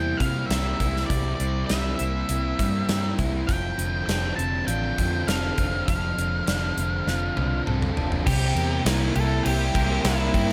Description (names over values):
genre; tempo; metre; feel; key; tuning
rock, shoegaze and dream pop; 100 BPM; 4/4; straight; C mixolydian; A4 = 440 Hz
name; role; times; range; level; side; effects
octave-fuzz lead guitar; melody; 0.0-10.5 s; E4 to A5; -32 LUFS; equal; distortion, slapback echo
electric guitar through a small old amp; arpeggios; 0.0-10.5 s; F3 to A4; -38 LUFS; equal; subtle chorus, slapback echo
overdriven semi-hollow guitar; riff; 0.0-10.5 s; C3 to Bb4; -33 LUFS; equal; reverse reverb
thick fuzz guitar; riff; 0.0-10.5 s; C3 to Bb4; -34 LUFS; equal; distortion, analog chorus
vintage muted fingered electric bass; bass; 0.0-10.5 s; F1 to C3; -29 LUFS; equal; none
gated 80s drum kit; drums; 0.2-10.5 s; crash cymbal, hi-hat, kick drum, snare drum, toms; -30 LUFS; equal; none
soft string machine; sustained chords; 8.7-10.5 s; Bb3 to E6; -37 LUFS; equal; none
room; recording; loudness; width
light reverb, studio reverb; none; -24 LUFS; mono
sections
0.0-8.3 A section; 8.3-10.5 A section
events
drum fill 7.1-8.3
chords
0.0 C7; 3.5 F6; 8.3 C7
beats
0.50 | 1.09 1.69 2.29 2.89 | 3.49 4.08 4.68 5.28 | 5.88 6.47 7.07 7.67 | 8.26 8.86 9.45 10.05